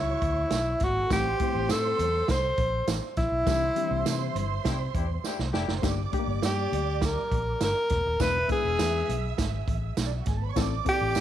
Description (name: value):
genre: uptempo 1960s-style soul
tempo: 101 BPM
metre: 4/4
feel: straight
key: unclear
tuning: A4 = 440 Hz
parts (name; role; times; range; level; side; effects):
- breathy tenor saxophone; melody; 0.0-11.2 s; E4 to C5; -27 LUFS; equal; tape echo
- warm studio string section; second line; 0.0-11.2 s; D4 to E6; -36 LUFS; right 13 dB; none
- vintage muted fingered electric bass; bass; 0.0-11.2 s; Eb1 to C3; -30 LUFS; left 1 dB; tube saturation
- vintage drum kit; drums; 0.2-11.2 s; hi-hat, kick drum, snare drum; -30 LUFS; right 2 dB; none
- congas; percussion; 0.2-11.2 s; none; -45 LUFS; right 10 dB; none
- tambourine; percussion; 0.5-11.2 s; none; -42 LUFS; right 14 dB; none
- reed electric piano; accompaniment; 1.1-11.2 s; Eb3 to B4; -34 LUFS; left 14 dB; overdrive
- mellow horn section; second line; 4.7-5.7 s; D4 to G4; -36 LUFS; left 13 dB; none
room: light reverb, small room ambience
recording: 1960s-style stereo with parts hard left and right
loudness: -24 LUFS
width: side -11 dB against mid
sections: 0.0-11.2 A section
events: band accent 3.5-5.8; drum fill 5.2-5.8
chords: 0.0 E7; 1.1 Am; 3.5 Cadd9; 5.8 Gm; 8.2 E7; 10.6 Am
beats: 0.52 | 1.10 1.70 2.29 2.88 | 3.47 4.06 4.65 5.24 | 5.83 6.43 7.02 7.61 | 8.20 8.79 9.38 9.98 | 10.57 11.16